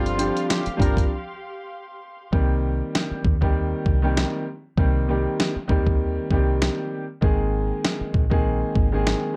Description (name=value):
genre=hip hop, boom-bap hip-hop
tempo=98 BPM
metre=4/4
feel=swing 57% on 16ths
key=C minor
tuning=A4 = 440 Hz
part: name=clear upright piano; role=accompaniment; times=0.0-9.4 s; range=Eb3 to Ab4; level=-28 LUFS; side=equal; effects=cassette tape, high-pass filter, low-pass filter
part: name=warm studio string section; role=sustained chords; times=0.0-2.3 s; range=G4 to C6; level=-37 LUFS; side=equal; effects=high-pass filter, low-pass filter
part: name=clear horn section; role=stabs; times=0.0-1.0 s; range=D3 to Bb4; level=-32 LUFS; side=equal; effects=high-pass filter, low-pass filter, slapback echo
part: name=deep dub fingered electric bass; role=bass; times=0.0-9.1 s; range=G1 to Eb2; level=-27 LUFS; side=equal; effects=none
part: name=dusty soul sampler-style drum kit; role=drums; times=0.1-9.2 s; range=hi-hat, kick drum, snare drum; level=-25 LUFS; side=equal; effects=none
room=little or no reverb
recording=dark, warm production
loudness=-23 LUFS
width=mono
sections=0.0-2.3 A section; 2.3-9.4 B section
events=break 1.1-2.3; hi-hats muted 2.3-9.4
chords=0.0 G7sus4; 2.3 Cm7; 7.2 Abadd9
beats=0.49 1.10 1.71 | 2.33 2.94 3.55 4.16 | 4.78 5.39 6.00 6.61 | 7.22 7.84 8.45 9.06